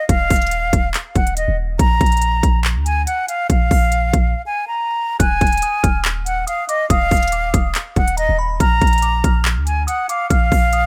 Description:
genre	hip hop, trap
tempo	141 BPM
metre	4/4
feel	half-time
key	Eb harmonic minor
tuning	A4 = 440 Hz
part	silver concert flute	melody	0.0-10.9 s	Eb5 to Bb5	-22 LUFS	equal	none
part	warm 808-style bass	bass	0.1-10.9 s	Eb1 to D2	-22 LUFS	equal	none
part	trap drum kit	drums	0.1-10.8 s	handclaps, hi-hat, kick drum	-20 LUFS	equal	none
part	glassy synth bell	second line	5.2-10.9 s	Bb5 to Gb6	-29 LUFS	equal	chorus, analog delay
room	little or no reverb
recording	none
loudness	-17 LUFS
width	mono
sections	0.0-10.9 A section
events	break 4.3-5.2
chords	0.0 Ebsus2; 1.8 Bb5; 5.2 Ebm; 8.6 Bb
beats	| 0.09 0.52 0.94 1.37 | 1.79 2.22 2.65 3.07 | 3.50 3.92 4.35 4.77 | 5.20 5.62 6.05 6.47 | 6.90 7.33 7.75 8.18 | 8.60 9.03 9.45 9.88 | 10.30 10.73

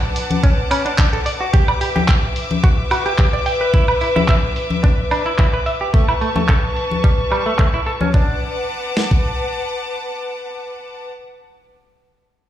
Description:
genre	nu-disco, nu disco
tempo	109 BPM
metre	4/4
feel	swing 53% on 16ths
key	D major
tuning	A4 = 442 Hz
part	clear studio string section	sustained chords	0.0-11.1 s	B4 to D6	-23 LUFS	left 1 dB	sidechain pumping, low-pass filter
part	pop drum kit	drums	0.2-8.1 s	handclaps, hi-hat, woodblock	-24 LUFS	right 1 dB	low-pass filter on hats, studio reverb, low-pass filter on perc, low-pass filter on snare
part	congas	percussion	0.3-8.1 s	none	-22 LUFS	left 4 dB	none
part	direct-recorded clean electric guitar	riff	0.4-8.4 s	G3 to G5	-22 LUFS	right 2 dB	wide subtle chorus, low-pass filter, tape echo
part	clean 12-bit digital drum machine	drums	0.4-9.2 s	kick drum, snare drum	-14 LUFS	equal	overdrive, studio reverb
room	light reverb, digital ambience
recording	played on a big sound system in a bare room, large studio reverb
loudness	-15 LUFS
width	side -12 dB against mid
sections	0.0-8.1 A section; 8.1-10.3 B section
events	filter sweep on drum 0.0-8.1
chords	0.0 D6; 1.5 G6; 3.7 E7(no3); 5.9 Aadd9; 8.1 D6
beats	0.43 0.98 | 1.53 2.08 2.64 3.19 | 3.74 4.29 4.84 5.39 | 5.94 6.49 7.04 7.59 | 8.14 8.69 9.24 9.79

